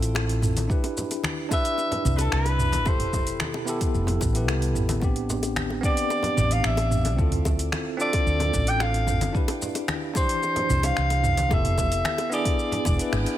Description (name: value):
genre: sunset chillout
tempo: 111 BPM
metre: 4/4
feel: straight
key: unclear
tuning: A4 = 441 Hz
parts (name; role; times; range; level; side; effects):
- bell-like tine electric piano; accompaniment; 0.0-13.4 s; B2 to C5; -29 LUFS; equal; fast stereo tremolo, auto-pan, ping-pong delay
- woody fretless electric bass; bass; 0.0-13.2 s; E1 to D2; -25 LUFS; equal; lush chorus
- deep house drum kit; drums; 0.0-13.4 s; finger snaps, hi-hat, shaker, toms; -30 LUFS; right 1 dB; small room reverb
- bongos and congas; percussion; 0.1-13.2 s; none; -34 LUFS; left 2 dB; none
- electronic kick drum; drums; 0.7-13.0 s; none; -25 LUFS; equal; small room reverb
- warm soprano saxophone; melody; 1.5-13.1 s; A4 to G5; -27 LUFS; equal; ping-pong delay
room: light reverb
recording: none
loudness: -22 LUFS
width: side -12 dB against mid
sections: 0.0-13.4 A section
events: band accent 13.1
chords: 0.0 Dm9 (rootless); 0.7 Cmaj7; 2.9 Fmaj9#11; 5.0 Am11; 7.2 Dm9; 9.3 Cmaj7; 11.5 Fmaj9#11; 12.6 E7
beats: 0.16 | 0.70 1.24 1.78 2.32 | 2.86 3.40 3.94 4.48 | 5.02 5.56 6.10 6.64 | 7.18 7.72 8.26 8.80 | 9.35 9.89 10.43 10.97 | 11.51 12.05 12.59 13.13